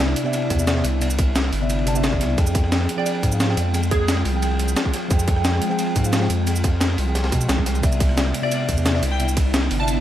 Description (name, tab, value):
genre	liquid drum and bass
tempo	176 BPM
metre	4/4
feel	straight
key	unclear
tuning	A4 = 441 Hz
part	mellow tine electric piano	accompaniment	0.0-10.0 s	C3 to A5	-26 LUFS	equal	medium stereo tremolo, tape echo
part	ethereal airy pad	sustained chords	0.0-10.0 s	Ab3 to G5	-29 LUFS	left 1 dB	ensemble chorus, built-in reverb, phaser, sidechain pumping
part	saturated sub bass	bass	0.0-10.0 s	G1 to B2	-22 LUFS	equal	none
part	crunchy breakbeat drum kit	drums	0.0-10.0 s	ride cymbal, snare drum	-30 LUFS	equal	high-pass filter on cymbals, studio ambience, high-pass filter on snare, high-pass filter on room, tape echo
part	breakbeat sampler-style drum kit	drums	0.1-9.9 s	hi-hat, ride cymbal, rim click, shaker, snare drum	-25 LUFS	equal	studio ambience
part	electronic kick drum	drums	0.5-9.4 s	none	-21 LUFS	equal	overdrive, studio ambience
part	glassy wavetable pluck	melody	3.0-4.2, 8.4-10.0 s	Ab4 to A5	-30 LUFS	right 2 dB	chorus, tape echo
room	light reverb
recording	echo-heavy mix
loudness	-18 LUFS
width	side -12 dB against mid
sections	0.0-10.0 A section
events	none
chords	0.0 Cmaj9; 2.4 Fmadd9; 7.8 Cmaj9